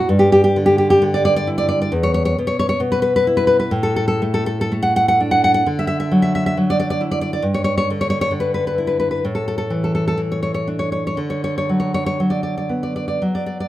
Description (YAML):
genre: romantic piece for solo classical guitar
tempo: 65 BPM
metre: 4/4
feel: uneven beats, rubato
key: D major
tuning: A4 = 444 Hz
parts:
  - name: nylon-string guitar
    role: solo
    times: 0.0-13.7 s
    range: E2 to F#5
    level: -16 LUFS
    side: equal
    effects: none
room: light reverb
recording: minimal, uncompressed stereo recording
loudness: -16 LUFS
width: side -14 dB against mid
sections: 0.0-13.7 A section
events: none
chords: 0.1 G5; 1.9 E5; 3.7 D/A; 5.7 D; 7.4 G5; 9.2 A5; 11.2 D